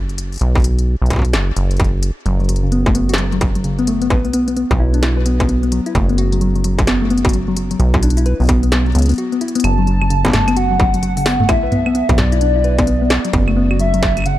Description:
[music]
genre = IDM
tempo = 130 BPM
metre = 4/4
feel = swing 62% on 16ths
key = F# minor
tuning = A4 = 440 Hz
[part]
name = deep acid bass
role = bass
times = 0.0-14.4 s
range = F#1 to C#2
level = -16 LUFS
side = equal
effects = tube saturation
[part]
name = industrial drum kit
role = drums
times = 0.1-14.4 s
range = claves, hi-hat, snare drum, toms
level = -22 LUFS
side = equal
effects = small room ambience
[part]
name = electronic kick drum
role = drums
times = 0.6-14.1 s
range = none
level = -17 LUFS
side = equal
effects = distortion, small room ambience
[part]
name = thumb-piano-like synth pluck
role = arpeggios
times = 2.3-14.3 s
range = C#3 to B4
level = -18 LUFS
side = left 2 dB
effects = chorus, digital delay
[part]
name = warbly nostalgic lead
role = melody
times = 9.6-14.4 s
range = D5 to A5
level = -20 LUFS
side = equal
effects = wide subtle chorus, tape echo
[sound]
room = digital ambience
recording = dark, warm production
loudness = -13 LUFS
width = side -14 dB against mid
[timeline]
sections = 0.0-9.6 A section; 9.6-14.4 B section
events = break 9.2-9.6; drum fill 9.4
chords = 0.4 B5; 2.3 N.C.; 9.6 F#m; 11.5 Bm; 13.3 F#7(no3)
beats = | 0.41 0.87 1.33 1.80 | 2.26 2.72 3.18 3.64 | 4.10 4.57 5.03 5.49 | 5.95 6.41 6.87 7.33 | 7.80 8.26 8.72 9.18 | 9.64 10.10 10.57 11.03 | 11.49 11.95 12.41 12.87 | 13.34 13.80 14.26

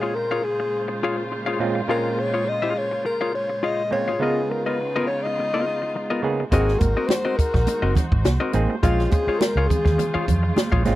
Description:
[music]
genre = funk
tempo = 104 BPM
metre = 4/4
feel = straight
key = unclear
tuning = A4 = 440 Hz
[part]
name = breathy alto saxophone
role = melody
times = 0.0-10.3 s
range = F4 to Eb5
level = -24 LUFS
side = left 2 dB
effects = none
[part]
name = semi-hollow electric guitar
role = accompaniment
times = 0.0-10.9 s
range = Cb4 to F5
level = -25 LUFS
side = left 4 dB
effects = none
[part]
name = muted studio string section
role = sustained chords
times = 0.0-11.0 s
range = Bb2 to C5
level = -30 LUFS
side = right 1 dB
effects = none
[part]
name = mellow clav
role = stabs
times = 0.0-11.0 s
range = Bb2 to Ab4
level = -26 LUFS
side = right 4 dB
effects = none
[part]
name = vintage muted fingered electric bass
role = bass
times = 6.5-11.0 s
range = Gb1 to F2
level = -21 LUFS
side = equal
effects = none
[part]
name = compact cocktail drum kit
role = drums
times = 6.5-11.0 s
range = hi-hat, kick drum, snare drum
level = -21 LUFS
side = equal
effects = none
[part]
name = congas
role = percussion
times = 6.8-11.0 s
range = none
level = -28 LUFS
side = right 4 dB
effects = none
[sound]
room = little or no reverb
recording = dry, close 1970s-style studio recording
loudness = -20 LUFS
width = side -15 dB against mid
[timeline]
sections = 0.0-11.0 A section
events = none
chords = 0.0 Bbm7; 4.2 Db13; 6.5 Ab9; 8.8 Bbm7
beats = 0.15 0.73 1.31 | 1.89 2.47 3.05 3.63 | 4.21 4.78 5.36 5.94 | 6.52 7.10 7.67 8.25 | 8.83 9.41 9.99 10.56

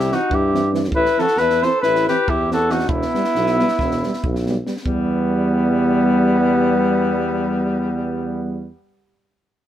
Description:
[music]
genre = balkan folk, Balkan brass band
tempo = 275 BPM (eighths)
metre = 9/8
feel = straight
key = E minor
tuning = A4 = 440 Hz
[part]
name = warm flugelhorn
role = melody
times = 0.0-8.7 s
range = B3 to C5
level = -20 LUFS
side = equal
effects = none
[part]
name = clear alto saxophone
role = second line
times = 0.0-8.7 s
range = G3 to A4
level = -25 LUFS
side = left 4 dB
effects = none
[part]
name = warm tuba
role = bass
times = 0.0-8.7 s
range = E1 to G2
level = -22 LUFS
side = right 2 dB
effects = none
[part]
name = mellow euphonium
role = accompaniment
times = 0.1-8.7 s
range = B3 to C4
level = -24 LUFS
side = left 2 dB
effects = none
[part]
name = mellow trombone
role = accompaniment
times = 0.1-8.7 s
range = E3 to G3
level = -25 LUFS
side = right 3 dB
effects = none
[part]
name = compact cocktail drum kit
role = percussion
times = 0.1-5.1 s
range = kick drum, snare drum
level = -27 LUFS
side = equal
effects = none
[sound]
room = moderate spring reverb, RT60 1.3 s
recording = heard from further back in the room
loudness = -16 LUFS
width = side -11 dB against mid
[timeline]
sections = 0.0-4.9 A section; 4.9-8.8 B section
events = none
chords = 0.0 C; 0.9 Am; 2.9 Em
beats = 0.04 0.26 0.48 0.70 | 0.92 1.14 1.35 1.57 1.79 2.01 2.23 2.45 2.67 | 2.88 3.10 3.32 3.54 3.76 3.98 4.20 4.42 4.64 | 4.86 5.07 5.29 5.51 5.73 5.95 6.17 6.38 6.60 | 6.82 7.04 7.26 7.48 7.69 7.91 8.13 8.35 8.56

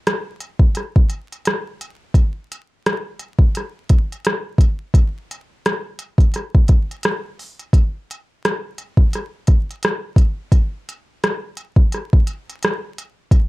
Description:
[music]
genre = hip hop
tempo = 86 BPM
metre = 4/4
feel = swing 60% on 16ths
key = none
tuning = none
[part]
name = organic electronic drum kit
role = drums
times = 0.1-13.5 s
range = hi-hat, kick drum, rim click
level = -14 LUFS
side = equal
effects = none
[sound]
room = light reverb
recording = dark, warm production, vinyl crackle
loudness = -16 LUFS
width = side -20 dB against mid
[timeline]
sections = 0.0-13.5 A section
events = none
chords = none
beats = 0.06 0.75 1.45 | 2.15 2.85 3.54 4.24 | 4.94 5.64 6.33 7.03 | 7.73 8.43 9.12 9.82 | 10.52 11.22 11.91 12.61 | 13.31

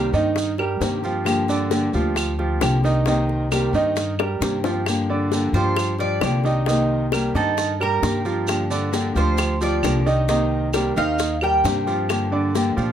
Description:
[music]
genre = latin, Cuban son and guajira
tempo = 133 BPM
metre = 4/4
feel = straight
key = G minor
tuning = A4 = 438 Hz
[part]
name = nylon-string guitar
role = accompaniment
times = 0.0-12.9 s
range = C3 to G4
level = -25 LUFS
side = left 3 dB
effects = none
[part]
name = bright baby grand piano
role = arpeggios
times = 0.0-12.9 s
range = D3 to Eb5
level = -24 LUFS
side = right 4 dB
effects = none
[part]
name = upright bass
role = bass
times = 0.0-12.9 s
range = C2 to Bb2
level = -24 LUFS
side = equal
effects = none
[part]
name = maracas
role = percussion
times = 0.1-12.9 s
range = none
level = -34 LUFS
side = right 4 dB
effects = none
[part]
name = bongos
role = percussion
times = 0.4-12.9 s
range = none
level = -28 LUFS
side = left 6 dB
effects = none
[part]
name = claves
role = percussion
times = 0.6-12.3 s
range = none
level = -30 LUFS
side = equal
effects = none
[part]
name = Cuban tres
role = melody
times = 5.5-12.1 s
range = A4 to G5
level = -24 LUFS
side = right 1 dB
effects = none
[sound]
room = moderate small room ambience, RT60 0.5 s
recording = none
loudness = -18 LUFS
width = side -9 dB against mid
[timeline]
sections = 0.0-4.9 A section; 4.9-12.9 B section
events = drum fill 4.2-4.9; Cuban tres solo 4.9-12.9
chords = 0.0 Cm7; 1.3 Gm7; 3.1 Cm7; 4.9 Gm7; 6.7 Cm7; 8.5 Gm7; 10.3 Cm7; 12.1 Gm7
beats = 0.36 0.81 | 1.26 1.71 2.16 2.61 | 3.06 3.52 3.97 4.42 | 4.87 5.32 5.77 6.22 | 6.67 7.13 7.58 8.03 | 8.48 8.93 9.38 9.84 | 10.29 10.74 11.19 11.64 | 12.10 12.55

